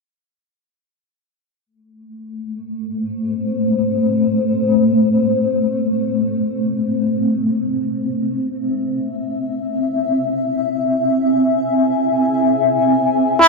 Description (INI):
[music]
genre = ambient dub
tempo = free time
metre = none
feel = none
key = A minor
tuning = A4 = 440 Hz
[part]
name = granular cloud pad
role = sustained chords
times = 2.4-13.5 s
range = A3 to G#5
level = -16 LUFS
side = left 1 dB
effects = built-in reverb
[part]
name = trumpet with cup mute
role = melody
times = 13.4-13.5 s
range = E4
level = -5 LUFS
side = right 1 dB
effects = none
[sound]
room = wet spring reverb, RT60 1.7 s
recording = none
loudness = -16 LUFS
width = side -2 dB against mid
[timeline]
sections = 1.7-13.5 A section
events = filter sweep on ambient pad 1.7-13.5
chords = 1.7 Am; 8.2 E